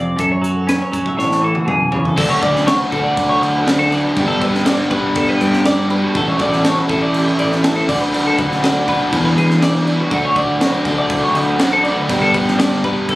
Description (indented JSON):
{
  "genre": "math rock and midwest emo",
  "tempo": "121 BPM",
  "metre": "4/4",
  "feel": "straight",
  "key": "unclear",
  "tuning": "A4 = 439 Hz",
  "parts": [
    { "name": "clean electric guitar", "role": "accompaniment", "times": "0.0-2.2 s", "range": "F2 to C#4", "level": "-20 LUFS", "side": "right 1 dB", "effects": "analog chorus" },
    { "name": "twelve-string electric guitar", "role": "arpeggios", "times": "0.0-13.2 s", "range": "F#4 to E5", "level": "-20 LUFS", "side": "left 1 dB", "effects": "none" },
    { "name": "fingered electric bass", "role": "bass", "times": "0.0-13.2 s", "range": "G1 to E3", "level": "-22 LUFS", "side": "equal", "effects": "none" },
    { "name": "crisp fusion drum kit", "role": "drums", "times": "0.2-13.2 s", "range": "crash cymbal, hi-hat, kick drum, snare drum, toms", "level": "-20 LUFS", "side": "equal", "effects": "none" },
    { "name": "overdriven electric guitar", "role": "riff", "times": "2.2-13.2 s", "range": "D3 to A4", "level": "-16 LUFS", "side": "equal", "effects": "none" }
  ],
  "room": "light reverb",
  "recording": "recorded on a phone in the room, club reverb, compression",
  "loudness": "-13 LUFS",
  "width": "side -18 dB against mid",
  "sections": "0.0-2.2 A section; 2.2-13.2 B section",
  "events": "drum fill 1.2-2.2",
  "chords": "0.2 F#m; 1.2 Amaj7; 2.2 Dmaj7; 4.2 G; 6.2 F#m/A; 6.9 Aadd9; 7.9 D; 9.1 E7(no3); 10.1 Dmaj7; 12.1 G"
}